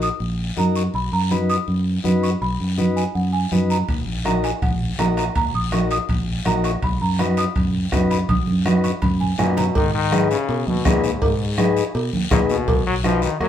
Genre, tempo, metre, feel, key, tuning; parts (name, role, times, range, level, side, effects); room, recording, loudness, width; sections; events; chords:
latin, cumbia; 164 BPM; 4/4; straight; A4 = 438 Hz
folk marimba with medium mallets; melody; 0.0-10.1 s; F#5 to Eb6; -25 LUFS; right 3 dB
combo organ; accompaniment; 0.0-13.3 s; Eb4 to B4; -25 LUFS; left 5 dB; spring reverb
fingered electric bass; bass; 0.0-13.5 s; Bb1 to Cb3; -22 LUFS; equal
guiro; percussion; 0.0-13.5 s; -34 LUFS; left 6 dB
congas; percussion; 0.2-13.2 s; -24 LUFS; right 3 dB
bombo; percussion; 3.9-13.5 s; -24 LUFS; equal
timbales and cowbell; percussion; 3.9-13.5 s; -29 LUFS; right 3 dB
bright trombone; second line; 9.4-13.5 s; Ab2 to F#3; -24 LUFS; left 5 dB
moderate studio ambience, RT60 0.4 s; band playing live in one room; -18 LUFS; side -10 dB against mid
0.0-9.8 A section; 9.8-13.5 B section
drum fill 8.3-9.8; trombone solo 9.8-13.5
0.0 Ebm; 0.9 B; 3.9 Ebm; 6.8 B; 9.8 Abm; 12.7 B